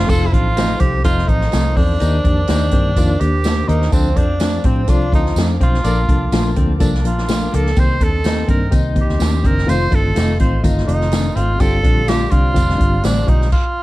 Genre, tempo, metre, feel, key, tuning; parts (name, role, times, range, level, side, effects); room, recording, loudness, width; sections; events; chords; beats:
uptempo 1960s-style soul; 125 BPM; 4/4; straight; F mixolydian; A4 = 439 Hz
clear tenor saxophone; melody; 0.0-13.8 s; C4 to C5; -22 LUFS; right 2 dB; plate reverb
reed electric piano; accompaniment; 0.0-13.5 s; D3 to C5; -21 LUFS; left 2 dB; overdrive, fast tremolo
mellow tonewheel organ; sustained chords; 0.0-13.5 s; Bb3 to D6; -31 LUFS; equal; slow rotary speaker, plate reverb
electric guitar through a small old amp; riff; 0.0-13.4 s; Bb3 to G4; -27 LUFS; left 4 dB
vintage muted fingered electric bass; bass; 0.0-13.5 s; F1 to A2; -18 LUFS; equal
swinging big-band drum kit; drums; 0.1-13.6 s; crash cymbal, hi-hat, kick drum, snare drum; -18 LUFS; equal
tambourine; percussion; 0.1-13.2 s; -35 LUFS; right 5 dB
clear horn section; second line; 5.8-6.0 s; D4 to D5; -28 LUFS; right 2 dB; plate reverb
light reverb; dark, warm production, vinyl crackle; -13 LUFS; side -18 dB against mid
0.1-13.8 A section
band accent 5.8-7.8; stop 13.5-13.8
0.1 F7; 2.0 Ebmaj7; 3.9 Dm7; 5.8 Bbmaj7; 7.8 Cm7; 9.7 F7; 11.6 G7sus4
| 0.09 0.57 1.05 1.53 | 2.01 2.49 2.97 3.45 | 3.93 4.41 4.89 5.37 | 5.85 6.33 6.81 7.29 | 7.77 8.25 8.73 9.21 | 9.69 10.17 10.64 11.12 | 11.61 12.08 12.56 13.04 | 13.52